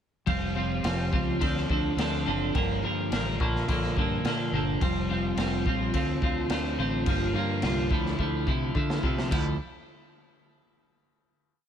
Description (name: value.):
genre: indie rock.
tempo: 106 BPM.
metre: 4/4.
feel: straight.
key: D minor.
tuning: A4 = 439 Hz.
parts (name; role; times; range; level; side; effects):
twelve-string electric guitar; riff; 0.3-9.5 s; G2 to Bb4; -28 LUFS; equal; double-tracked left and right.
growling fingered electric bass; bass; 0.3-9.6 s; F1 to D3; -31 LUFS; equal; overdrive.
raw garage drum kit; drums; 0.3-9.4 s; crash cymbal, kick drum, snare drum; -31 LUFS; equal; none.
room: light reverb.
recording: none.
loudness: -25 LUFS.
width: side -9 dB against mid.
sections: 0.3-9.3 chorus; 9.3-11.6 final chord.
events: drum fill 8.2-9.3.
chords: 0.3 Fsus2; 1.4 Dm7; 2.5 Gm7; 4.8 Fsus2; 5.9 Dm7; 7.1 Gm7; 7.9 Dmadd9.